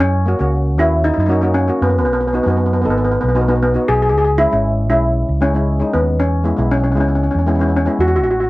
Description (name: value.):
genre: calypso.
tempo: 116 BPM.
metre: 4/4.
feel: straight.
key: E major.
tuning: A4 = 440 Hz.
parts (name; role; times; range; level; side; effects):
steel pan; melody; 0.0-8.5 s; B3 to G#4; -17 LUFS; equal; none.
mellow fretless electric bass; bass; 0.0-8.5 s; G#1 to F#2; -17 LUFS; equal; lush chorus.
steel pan; accompaniment; 0.3-8.3 s; G#3 to A4; -21 LUFS; left 1 dB; none.
room: little or no reverb.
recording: worn, warbling old tape, cassette tape, warbly pitch drift.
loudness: -13 LUFS.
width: side -19 dB against mid.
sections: 0.0-8.5 A section.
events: none.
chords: 0.0 F#; 2.1 B; 4.1 C#m; 6.2 E.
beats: | 0.01 0.53 1.04 1.56 | 2.08 2.59 3.10 3.62 | 4.14 4.65 5.17 5.68 | 6.19 6.71 7.22 7.74 | 8.25.